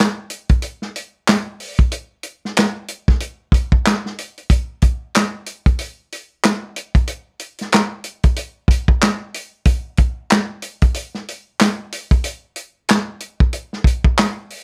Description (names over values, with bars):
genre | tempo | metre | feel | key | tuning
R&B | 93 BPM | 4/4 | swing 58% on 16ths | none | none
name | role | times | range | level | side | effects
warm soul drum kit | drums | 0.0-14.6 s | handclaps, hi-hat, kick drum, snare drum | -18 LUFS | equal | none
room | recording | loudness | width
light reverb | none | -19 LUFS | mono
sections
0.0-14.6 A section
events
none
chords
none